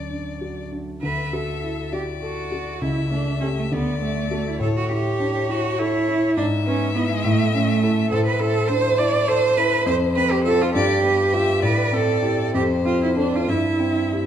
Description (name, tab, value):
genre	quick classical-period movement for piano trio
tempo	68 BPM (dotted quarters)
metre	6/8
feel	rubato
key	D major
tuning	A4 = 440 Hz
part	rich violin	melody	0.0-14.3 s	B4 to E5	-28 LUFS	left 8 dB	none
part	clear cello	second line	0.0-14.3 s	F#3 to D5	-22 LUFS	right 4 dB	none
part	warm grand piano	accompaniment	0.0-14.3 s	C#2 to B4	-23 LUFS	left 1 dB	none
room	wet recital hall reverb, RT60 1.6 s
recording	dark, warm production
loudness	-19 LUFS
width	side -9 dB against mid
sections	0.0-1.0 A section; 1.0-14.3 A section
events	none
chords	0.0 D; 2.8 A7/C#; 3.7 D; 4.6 A; 6.4 E/G#; 7.2 A; 8.1 Am; 9.9 F; 10.7 G7; 11.6 Am7; 12.5 Dm7/F; 13.5 C/G